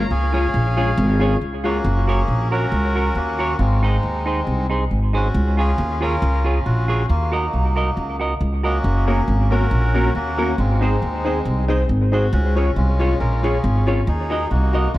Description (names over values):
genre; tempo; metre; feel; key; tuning
ska; 137 BPM; 4/4; swing 54% on 8ths; Db major; A4 = 437 Hz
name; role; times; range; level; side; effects
melodica; melody; 0.0-15.0 s; Gb3 to Bb5; -25 LUFS; equal; tape echo
semi-hollow electric guitar; accompaniment; 0.0-14.9 s; Db4 to Eb5; -26 LUFS; right 2 dB; tape echo
warm upright piano; stabs; 0.0-1.8, 9.1-14.9 s; Ab3 to Eb5; -26 LUFS; left 4 dB; tape echo
upright bass; bass; 0.0-15.0 s; Gb1 to Eb2; -19 LUFS; equal; none
room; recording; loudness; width
light reverb, studio ambience; dark, warm production; -17 LUFS; side -16 dB against mid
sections
0.0-1.8 A section; 1.8-15.0 B section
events
none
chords
0.1 Db; 1.8 Gb; 3.6 Ab; 5.3 Db; 7.1 Ebm; 8.8 Gb; 10.6 Ab; 12.3 Db; 14.1 Ebm